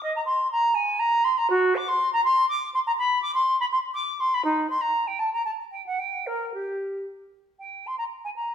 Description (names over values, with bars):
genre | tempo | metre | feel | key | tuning
classical, baroque-style fantasia for unaccompanied flute | 110-126 BPM | 3/4 | rubato | G minor | A4 = 440 Hz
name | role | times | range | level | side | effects
silver concert flute | solo | 0.0-8.5 s | Eb4 to D6 | -22 LUFS | equal | none
room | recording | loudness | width
wet stone room reverb, RT60 1.2 s | heard from further back in the room | -22 LUFS | side -8 dB against mid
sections
0.0-7.6 A section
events
none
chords
none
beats
| 0.03 0.51 0.99 | 1.50 2.00 2.49 | 2.98 3.47 3.96 | 4.46 4.96 5.46 | 5.99 6.54 7.07 | 7.60 8.11